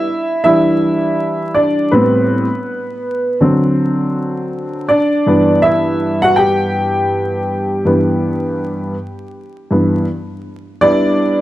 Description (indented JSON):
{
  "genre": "hip hop",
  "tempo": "81 BPM",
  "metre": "4/4",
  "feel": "swing 61% on 16ths",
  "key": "G major",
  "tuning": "A4 = 440 Hz",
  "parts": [
    { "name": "warm upright piano", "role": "solo", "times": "0.0-11.4 s", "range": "G2 to G5", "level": "-13 LUFS", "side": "equal", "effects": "slapback echo" }
  ],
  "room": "moderate plate reverb, RT60 2.5 s",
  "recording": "dark, warm production, vinyl crackle",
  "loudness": "-13 LUFS",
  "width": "side -15 dB against mid",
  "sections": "0.0-10.8 A section",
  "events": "upright piano solo 0.0-10.8",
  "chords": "0.5 Em7; 1.9 Am9; 3.4 D7; 4.9 G6"
}